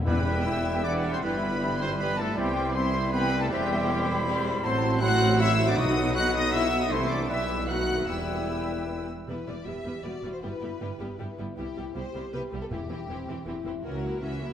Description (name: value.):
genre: classical, dramatic, fast romantic movement for symphony orchestra.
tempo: 158 BPM.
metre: 3/4.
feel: straight.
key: E minor.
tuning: A4 = 442 Hz.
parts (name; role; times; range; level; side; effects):
timpani; percussion; 0.0-0.6, 5.8-6.3, 12.7-13.2 s; E2 to B2; -32 LUFS; left 1 dB; none.
warm symphonic violin section; melody; 0.1-14.5 s; G4 to F#6; -35 LUFS; left 4 dB; none.
bright small flute group; second line; 0.1-9.1 s; C5 to B5; -35 LUFS; left 1 dB; none.
rich symphonic violin section; second line; 0.1-14.5 s; C4 to E5; -41 LUFS; left 3 dB; none.
warm clarinet; second line; 0.1-9.1 s; D#4 to F#4; -37 LUFS; left 1 dB; none.
warm oboe; second line; 0.1-9.1 s; B4 to C5; -38 LUFS; right 1 dB; none.
rich symphonic viola section; accompaniment; 0.1-14.5 s; E3 to E4; -37 LUFS; right 1 dB; none.
warm bassoon; accompaniment; 0.1-9.1 s; F#3 to A3; -37 LUFS; equal; none.
bright trombone section; sustained chords; 0.1-9.1 s; D#3 to E4; -38 LUFS; right 2 dB; none.
mellow French horn section; sustained chords; 0.1-14.5 s; G3 to G4; -33 LUFS; left 2 dB; none.
clear trumpet section; stabs; 0.1-9.1 s; G4 to F#5; -32 LUFS; equal; none.
mellow tuba; bass; 0.1-9.1 s; E1 to C2; -35 LUFS; right 4 dB; none.
rich symphonic cello section; bass; 0.1-14.5 s; C2 to C3; -36 LUFS; right 2 dB; none.
rich symphonic double bass section; bass; 0.1-14.5 s; E1 to C#2; -34 LUFS; right 3 dB; none.
room: wet concert hall reverb, RT60 1.8 s.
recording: none.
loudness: -25 LUFS.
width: side -9 dB against mid.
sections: 0.1-9.3 A section; 9.3-14.5 A section.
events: none.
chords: 0.1 Em; 1.2 Em/G; 2.4 Cmaj7; 3.5 C/E; 4.6 F#m7b5/A; 5.8 B; 6.9 Am/C; 7.3 Em/B; 7.7 B7; 8.1 Em; 10.4 Em/G; 11.6 Cmaj7; 12.7 C/E; 13.8 F#7/C#.